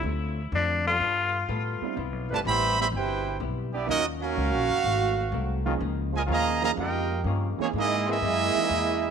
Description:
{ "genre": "jazz, big band swing", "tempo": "125 BPM", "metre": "4/4", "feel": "swing 69% on 8ths", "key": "unclear", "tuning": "A4 = 440 Hz", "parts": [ { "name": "vintage hollow-body jazz guitar", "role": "accompaniment", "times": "0.0-9.1 s", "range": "Ab2 to A4", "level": "-36 LUFS", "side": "left 14 dB", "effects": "none" }, { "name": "warm concert grand piano", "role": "accompaniment", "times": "0.0-2.0, 5.7-8.7 s", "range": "E3 to Ab4", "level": "-35 LUFS", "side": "right 14 dB", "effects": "none" }, { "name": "upright bass", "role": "bass", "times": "0.0-9.1 s", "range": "Gb1 to A2", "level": "-30 LUFS", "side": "equal", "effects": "none" }, { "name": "bright tenor saxophone", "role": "melody", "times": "0.6-1.5 s", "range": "D4 to F4", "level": "-27 LUFS", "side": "left 4 dB", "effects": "tape echo" }, { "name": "warm trombone section", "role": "sustained chords", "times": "0.9-2.4, 5.6-8.2 s", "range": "Eb3 to B4", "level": "-36 LUFS", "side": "left 2 dB", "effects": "none" }, { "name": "bright trumpet section", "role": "melody", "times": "2.3-9.1 s", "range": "Bb3 to B5", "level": "-26 LUFS", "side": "right 2 dB", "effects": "none" }, { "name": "bright trombone section", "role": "second line", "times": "2.3-9.1 s", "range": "Bb2 to G4", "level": "-30 LUFS", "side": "right 13 dB", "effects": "tape echo" } ], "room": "light reverb, studio reverb", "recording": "1960s-style stereo with parts hard left and right", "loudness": "-24 LUFS", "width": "side -7 dB against mid", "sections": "0.0-2.0 A section; 2.0-9.1 B section", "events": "tenor saxophone solo 0.0-2.0", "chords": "0.0 Dm7; 1.0 G9; 3.9 Ebm9; 4.8 Ab7b9; 5.8 Db69; 7.7 C7alt" }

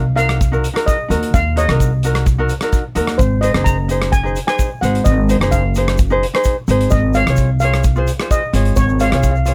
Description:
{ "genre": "calypso", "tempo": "129 BPM", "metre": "4/4", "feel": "straight", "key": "unclear", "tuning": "A4 = 435 Hz", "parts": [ { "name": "steel pan", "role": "melody", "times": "0.0-9.5 s", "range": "C5 to Bb5", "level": "-23 LUFS", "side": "equal", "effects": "none" }, { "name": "ukulele", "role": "accompaniment", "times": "0.0-9.5 s", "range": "Eb4 to Db5", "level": "-23 LUFS", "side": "equal", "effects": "none" }, { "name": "upright bass", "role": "bass", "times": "0.0-9.5 s", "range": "Gb1 to Eb2", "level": "-18 LUFS", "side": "equal", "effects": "none" }, { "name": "modern studio drum kit", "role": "drums", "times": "0.2-9.5 s", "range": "hi-hat, kick drum, rim click", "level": "-22 LUFS", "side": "equal", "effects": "none" }, { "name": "tube shaker", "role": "percussion", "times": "0.2-9.5 s", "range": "none", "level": "-37 LUFS", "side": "equal", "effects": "none" } ], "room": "little or no reverb", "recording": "none", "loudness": "-16 LUFS", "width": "mono", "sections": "0.0-9.5 A section", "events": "none", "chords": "0.0 Ebm; 3.2 Ab7; 6.9 Db/Ab" }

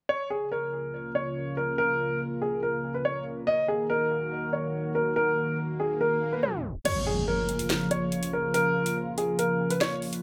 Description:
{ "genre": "hip hop, drill", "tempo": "142 BPM", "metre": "4/4", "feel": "half-time", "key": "Bb minor", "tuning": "A4 = 440 Hz", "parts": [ { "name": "dark baby grand piano", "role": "melody", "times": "0.1-10.0 s", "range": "Ab4 to Eb5", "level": "-29 LUFS", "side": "equal", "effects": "low-pass filter, tape echo" }, { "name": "dark analog pad", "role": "sustained chords", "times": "0.1-10.2 s", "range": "Db3 to Bb4", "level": "-34 LUFS", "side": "equal", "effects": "chorus" }, { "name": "swell and impact", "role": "sound effects", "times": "6.0-8.5 s", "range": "none", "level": "-38 LUFS", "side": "equal", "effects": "none" }, { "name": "drill drum kit", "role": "drums", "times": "6.9-10.2 s", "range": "crash cymbal, handclaps, hi-hat, snare drum", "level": "-35 LUFS", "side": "equal", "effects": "none" } ], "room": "light reverb", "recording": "echo-heavy mix, tape stop", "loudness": "-28 LUFS", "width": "mono", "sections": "0.1-6.9 A section; 6.9-10.2 B section", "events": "swell 6.0-6.9; tape stop 6.4-6.9; kick muted 6.9-10.2; impact 6.9-8.5", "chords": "0.1 Bbm; 3.5 Ebm; 6.9 Bbm" }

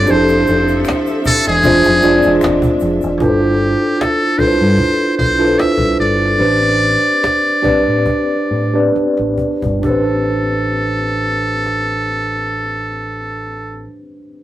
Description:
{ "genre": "R&B, neo-soul", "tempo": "66-77 BPM", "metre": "4/4", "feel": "swing 55% on 16ths", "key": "A minor", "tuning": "A4 = 440 Hz", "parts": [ { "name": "trumpet with metal mute", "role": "melody", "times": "0.0-13.9 s", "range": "G4 to E5", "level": "-17 LUFS", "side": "equal", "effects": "none" }, { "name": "mellow tine electric piano", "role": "accompaniment", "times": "0.0-14.4 s", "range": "B3 to D5", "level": "-15 LUFS", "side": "equal", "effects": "medium stereo tremolo" }, { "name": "clear studio string section", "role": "sustained chords", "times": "0.0-3.2 s", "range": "F3 to E5", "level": "-24 LUFS", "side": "equal", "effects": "none" }, { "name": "deep dub fingered electric bass", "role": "bass", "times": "0.0-13.9 s", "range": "E1 to A2", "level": "-20 LUFS", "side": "equal", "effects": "none" }, { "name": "cajon", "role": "drums", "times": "0.1-11.9 s", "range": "none", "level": "-21 LUFS", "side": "equal", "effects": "none" }, { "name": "egg shaker and finger snaps", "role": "percussion", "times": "0.1-3.2 s", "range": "none", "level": "-34 LUFS", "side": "left 3 dB", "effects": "none" } ], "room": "moderate small room reverb, RT60 0.5 s", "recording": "rough rehearsal-room recording, warm saturation", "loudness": "-12 LUFS", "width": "side -14 dB against mid", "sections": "0.0-3.2 A section; 3.2-9.8 B section; 9.8-13.5 C section", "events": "slowing down 3.2-9.8; drum fill 8.9-9.8", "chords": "0.1 Fmaj7; 1.6 E7b9b13; 3.2 G9sus4; 6.4 Am11" }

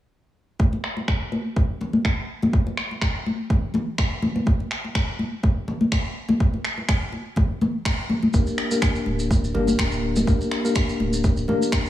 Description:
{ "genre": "afro house", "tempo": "124 BPM", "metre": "4/4", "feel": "swing 55% on 16ths", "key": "G minor pentatonic", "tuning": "A4 = 440 Hz", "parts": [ { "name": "electronic kick drum", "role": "drums", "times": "0.6-11.8 s", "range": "none", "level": "-21 LUFS", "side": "equal", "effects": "overdrive" }, { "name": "congas", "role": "percussion", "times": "0.6-11.8 s", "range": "none", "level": "-25 LUFS", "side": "left 1 dB", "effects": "none" }, { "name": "electronic finger snaps", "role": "drums", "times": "0.8-11.8 s", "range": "none", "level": "-28 LUFS", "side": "equal", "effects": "overdrive, low-pass filter on snare, low-pass filter on room" }, { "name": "tine electric piano", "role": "stabs", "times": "8.3-11.9 s", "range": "Bb3 to Bb4", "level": "-24 LUFS", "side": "left 2 dB", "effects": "medium stereo tremolo, sidechain pumping, digital delay" }, { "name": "warm sub bass", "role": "bass", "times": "8.3-11.5 s", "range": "D1 to G1", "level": "-27 LUFS", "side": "equal", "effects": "sidechain pumping" }, { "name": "maracas", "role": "percussion", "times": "8.3-11.9 s", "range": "none", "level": "-35 LUFS", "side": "right 2 dB", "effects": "none" } ], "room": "light reverb", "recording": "small room ambience", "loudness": "-20 LUFS", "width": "side -13 dB against mid", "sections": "0.6-11.9 A section", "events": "none", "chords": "0.6 N.C.; 8.3 Gm" }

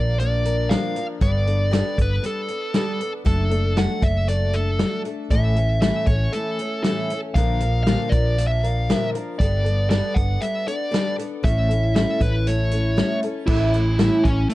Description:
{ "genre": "folk rock and heartland rock", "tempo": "117 BPM", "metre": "4/4", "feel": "straight", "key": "unclear", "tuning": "A4 = 439 Hz", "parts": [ { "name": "dark smooth lead guitar", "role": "melody", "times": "0.0-14.5 s", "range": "A3 to F#5", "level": "-26 LUFS", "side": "right 1 dB", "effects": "overdrive, tape echo" }, { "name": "picked twelve-string acoustic guitar", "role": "accompaniment", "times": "0.0-14.5 s", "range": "A2 to Bb4", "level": "-26 LUFS", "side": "left 2 dB", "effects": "none" }, { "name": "hollow-body short-scale fingered electric bass", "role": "bass", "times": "0.0-14.5 s", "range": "F#1 to Bb1", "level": "-21 LUFS", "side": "equal", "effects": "none" }, { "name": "vintage drum kit", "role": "drums", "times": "0.2-14.5 s", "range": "crash cymbal, hi-hat, kick drum, snare drum", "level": "-22 LUFS", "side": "equal", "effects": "vintage 12-bit sampler grit" } ], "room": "light reverb", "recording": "dark, warm production", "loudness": "-19 LUFS", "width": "side -17 dB against mid", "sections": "0.0-13.5 A section; 13.5-14.5 A section", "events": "none", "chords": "0.0 Bb; 1.2 Gadd9; 3.3 D/F#; 5.3 A; 7.3 Bb; 9.4 Gadd9; 11.4 A" }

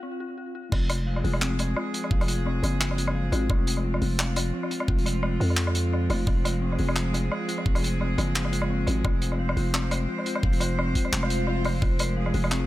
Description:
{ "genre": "half-time drum and bass", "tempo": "173 BPM", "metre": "4/4", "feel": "swing 55% on 16ths, half-time", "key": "F phrygian", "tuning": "A4 = 440 Hz", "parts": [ { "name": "dark detuned synth bell", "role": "arpeggios", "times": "0.0-12.7 s", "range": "C4 to F5", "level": "-33 LUFS", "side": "left 4 dB", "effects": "chorus, tremolo, vintage 12-bit sampler grit, digital delay" }, { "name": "clear symphonic cello section", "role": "sustained chords", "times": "0.7-12.7 s", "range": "F3 to C5", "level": "-31 LUFS", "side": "right 2 dB", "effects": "sidechain pumping" }, { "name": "growling 808-style bass", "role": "bass", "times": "0.7-12.7 s", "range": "F1 to F2", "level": "-26 LUFS", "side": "equal", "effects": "none" }, { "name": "crunchy breakbeat drum kit", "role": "drums", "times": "0.7-12.6 s", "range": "crash cymbal, handclaps, hi-hat, woodblock", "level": "-30 LUFS", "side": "equal", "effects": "none" }, { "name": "electronic kick drum", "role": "drums", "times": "0.7-11.9 s", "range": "none", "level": "-25 LUFS", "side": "equal", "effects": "high-pass filter on kick, high-pass filter on room" }, { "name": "swell", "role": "sound effects", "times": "11.2-11.8 s", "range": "none", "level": "-35 LUFS", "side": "left 2 dB", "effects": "none" } ], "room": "small room ambience", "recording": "high-pass filter", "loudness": "-23 LUFS", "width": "side -15 dB against mid", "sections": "0.7-12.7 A section", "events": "break 0.0-0.7; drop 0.7-12.7; kick drops out 11.1-11.8; swell 11.2-11.8", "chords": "0.0 F5; 0.7 Fm" }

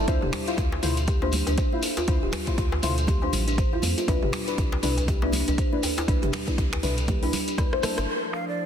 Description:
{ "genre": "afro house", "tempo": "120 BPM", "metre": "4/4", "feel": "swing 58% on 16ths", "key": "D dorian", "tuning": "A4 = 440 Hz", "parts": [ { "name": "kalimba", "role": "arpeggios", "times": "0.0-8.0 s", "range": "A3 to C5", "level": "-31 LUFS", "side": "equal", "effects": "sidechain pumping, ping-pong delay" }, { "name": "deep mellow chord stab", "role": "stabs", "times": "0.0-8.1 s", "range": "D4 to C5", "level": "-30 LUFS", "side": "left 4 dB", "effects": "chorus, phaser, cassette tape, sidechain pumping, ping-pong delay" }, { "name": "round analog bass", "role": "bass", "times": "0.0-8.1 s", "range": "D1 to F2", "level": "-28 LUFS", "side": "equal", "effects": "sidechain pumping" }, { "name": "deep house drum kit", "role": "drums", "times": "0.1-8.4 s", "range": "finger snaps, hi-hat, rim click, toms", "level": "-32 LUFS", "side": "right 1 dB", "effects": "overdrive, low-pass filter on hats, low-pass filter on toms, soft clipping on snare, low-pass filter on snare" }, { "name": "electronic kick drum", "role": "drums", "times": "0.1-7.7 s", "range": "none", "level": "-25 LUFS", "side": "equal", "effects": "overdrive" }, { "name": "congas", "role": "percussion", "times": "0.1-7.9 s", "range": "none", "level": "-36 LUFS", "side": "right 4 dB", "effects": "none" }, { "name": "shekere", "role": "percussion", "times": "0.1-8.1 s", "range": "none", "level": "-37 LUFS", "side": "left 3 dB", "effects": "none" }, { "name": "djembe", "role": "percussion", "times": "0.2-7.7 s", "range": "none", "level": "-36 LUFS", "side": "left 2 dB", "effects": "none" }, { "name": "warm analog pad", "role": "sustained chords", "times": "8.1-8.7 s", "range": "F3 to C5", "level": "-34 LUFS", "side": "right 1 dB", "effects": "chorus, sidechain pumping" }, { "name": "breathy mellow jazz flute", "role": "melody", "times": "8.3-8.6 s", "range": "D5 to F5", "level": "-30 LUFS", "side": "right 3 dB", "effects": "none" } ], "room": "light reverb, small room ambience", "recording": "dense, heavily limited modern master", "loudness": "-22 LUFS", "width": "side -9 dB against mid", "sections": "0.0-8.1 A section", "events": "drum fill 7.6-8.1; band accent 8.0", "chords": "0.1 Dm9; 4.1 Cmaj9; 8.1 Dm9" }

